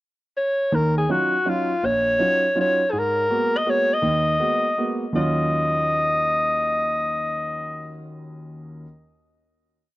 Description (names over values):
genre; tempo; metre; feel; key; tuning
jazz; 163 BPM; 3/4; swing 64% on 8ths; Eb minor; A4 = 439 Hz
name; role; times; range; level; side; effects
breathy alto saxophone; melody; 0.4-8.1 s; F4 to Eb5; -20 LUFS; left 1 dB; none
warm grand piano; accompaniment; 0.7-8.9 s; Bb1 to Gb4; -25 LUFS; right 1 dB; none
room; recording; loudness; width
small room ambience; dry, close 1970s-style studio recording; -19 LUFS; side -17 dB against mid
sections
0.0-0.7 pickup bar; 0.7-5.1 A section; 5.1-7.3 final chord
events
none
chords
0.0 N.C.; 0.7 Ebm9; 2.9 Abm9; 5.1 Ebm9